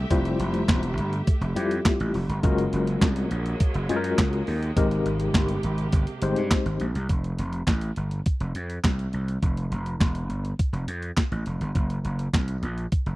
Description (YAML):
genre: early-eighties boogie funk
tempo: 103 BPM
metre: 4/4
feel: straight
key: unclear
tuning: A4 = 440 Hz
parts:
  - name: rich studio string section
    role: sustained chords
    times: 0.0-7.1 s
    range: C3 to E5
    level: -34 LUFS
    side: right 2 dB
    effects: none
  - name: gritty slap bass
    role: bass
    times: 0.0-13.2 s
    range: E1 to G2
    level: -27 LUFS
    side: equal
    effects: overdrive
  - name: tine electric piano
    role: accompaniment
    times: 0.1-6.8 s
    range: G3 to C5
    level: -27 LUFS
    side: left 3 dB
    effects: medium tremolo
  - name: clean 12-bit digital drum machine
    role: drums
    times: 0.1-13.2 s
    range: handclaps, hi-hat, kick drum, snare drum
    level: -22 LUFS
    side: equal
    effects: none
room: little or no reverb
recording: dry, close 1970s-style studio recording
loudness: -23 LUFS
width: side -18 dB against mid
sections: 0.0-7.1 A section; 7.1-13.2 B section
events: none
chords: 0.0 Fmaj9; 2.4 Gbmaj9; 4.8 Abmaj9; 7.1 Fsus2; 11.8 Gb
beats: | 0.10 0.69 1.27 1.85 | 2.44 3.02 3.60 4.18 | 4.77 5.35 5.93 6.51 | 7.10 7.68 8.26 8.84 | 9.43 10.01 10.59 11.17 | 11.76 12.34 12.92